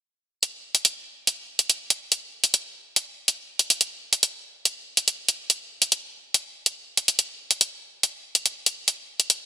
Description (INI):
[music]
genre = hip hop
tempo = 142 BPM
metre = 4/4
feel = half-time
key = none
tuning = none
[part]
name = electronic hi-hat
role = drums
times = 0.4-9.4 s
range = none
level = -21 LUFS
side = equal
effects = none
[sound]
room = little or no reverb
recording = dense, heavily limited modern master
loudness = -22 LUFS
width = side -9 dB against mid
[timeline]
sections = 0.4-9.5 A section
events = kick muted 6.3-7.2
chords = none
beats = | 0.43 0.85 1.27 1.70 | 2.12 2.54 2.96 3.39 | 3.81 4.23 4.65 5.08 | 5.50 5.92 6.34 6.77 | 7.19 7.61 8.03 8.46 | 8.88 9.30